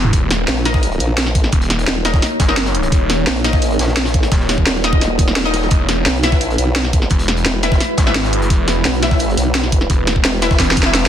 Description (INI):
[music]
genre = dark technical drum and bass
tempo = 172 BPM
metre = 4/4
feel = straight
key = Eb phrygian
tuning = A4 = 443 Hz
[part]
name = deep dark ambient pad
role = sustained chords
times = 0.0-11.1 s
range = G#3 to Db5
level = -23 LUFS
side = right 1 dB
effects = chorus, built-in reverb, sidechain pumping
[part]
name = snarling distorted saw bass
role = bass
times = 0.0-11.1 s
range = Eb1 to G#1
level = -19 LUFS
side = equal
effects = overdrive, sidechain pumping
[part]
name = drum and bass drum kit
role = drums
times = 0.0-11.1 s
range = hi-hat, snare drum, toms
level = -18 LUFS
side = equal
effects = studio reverb
[part]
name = crunchy breakbeat drum kit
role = drums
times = 0.1-11.1 s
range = hi-hat, snare drum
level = -29 LUFS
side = equal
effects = none
[part]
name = electronic kick drum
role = drums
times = 0.1-10.8 s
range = none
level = -15 LUFS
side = equal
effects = studio reverb
[part]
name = formant-sweep wobble bass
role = bass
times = 0.5-10.6 s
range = Eb1 to B1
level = -19 LUFS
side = equal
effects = chorus
[part]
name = orchestra-hit-like synth stab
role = stabs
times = 0.7-11.0 s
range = Eb4 to E5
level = -22 LUFS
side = left 3 dB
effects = built-in reverb, tape echo
[sound]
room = little or no reverb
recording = dense, heavily limited modern master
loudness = -13 LUFS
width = side -10 dB against mid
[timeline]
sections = 0.0-11.1 A section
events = drum fill 10.6-11.1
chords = 0.1 Ebm7; 5.7 Eadd9